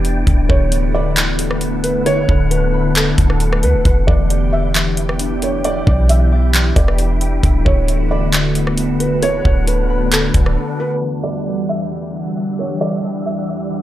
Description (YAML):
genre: hip hop, atmospheric cloud-rap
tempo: 134 BPM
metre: 4/4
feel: half-time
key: unclear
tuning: A4 = 439 Hz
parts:
  - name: glassy FM pad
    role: sustained chords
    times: 0.0-13.8 s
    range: E2 to F#5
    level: -21 LUFS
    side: left 1 dB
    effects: ensemble chorus, built-in reverb, sidechain pumping
  - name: concert harp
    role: arpeggios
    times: 0.0-13.8 s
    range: D3 to D6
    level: -27 LUFS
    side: left 5 dB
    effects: diffuse ambient delay
  - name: clean 808-style bass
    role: bass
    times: 0.0-10.6 s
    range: D1 to D2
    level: -16 LUFS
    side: equal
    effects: none
  - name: trap drum kit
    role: drums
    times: 0.0-10.6 s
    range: handclaps, hi-hat, kick drum, rim click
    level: -17 LUFS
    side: equal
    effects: none
  - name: wind-like tuned noise texture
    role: texture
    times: 0.0-13.8 s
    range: D4 to G5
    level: -29 LUFS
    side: equal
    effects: built-in reverb, ensemble chorus
  - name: felt-muted upright piano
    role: melody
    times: 0.5-13.8 s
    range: A4 to E5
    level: -22 LUFS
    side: right 2 dB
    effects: diffuse ambient delay
room: light reverb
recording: low-pass filter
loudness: -14 LUFS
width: side -13 dB against mid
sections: 0.0-11.0 A section; 11.0-13.8 B section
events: break 10.6-11.0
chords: 0.3 D6; 3.9 Em7; 7.4 D6; 11.0 Em7